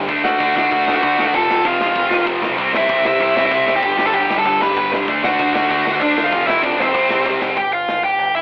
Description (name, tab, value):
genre	punk rock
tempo	192 BPM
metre	4/4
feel	straight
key	C major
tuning	A4 = 442 Hz
part	overdriven electric guitar	riff	0.0-7.6 s	F2 to D4	-22 LUFS	equal	cassette tape
part	sludgy distorted guitar	riff	0.0-7.6 s	F2 to D4	-27 LUFS	equal	none
part	growling picked electric bass	bass	0.0-8.4 s	F1 to D2	-29 LUFS	equal	overdrive
part	big rock drum kit	drums	0.1-8.3 s	crash cymbal, hi-hat, kick drum, snare drum	-29 LUFS	equal	cassette tape
part	dark smooth lead guitar	melody	0.2-8.4 s	C4 to B5	-19 LUFS	equal	overdrive, cassette tape
room	small room reverb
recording	home recording on cassette, telephone sound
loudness	-17 LUFS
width	mono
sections	0.0-7.6 A section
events	drum fill 7.3-7.6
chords	0.1 D; 1.3 F; 2.6 C; 3.8 G; 5.1 D; 6.3 F5; 6.9 C5; 7.6 G5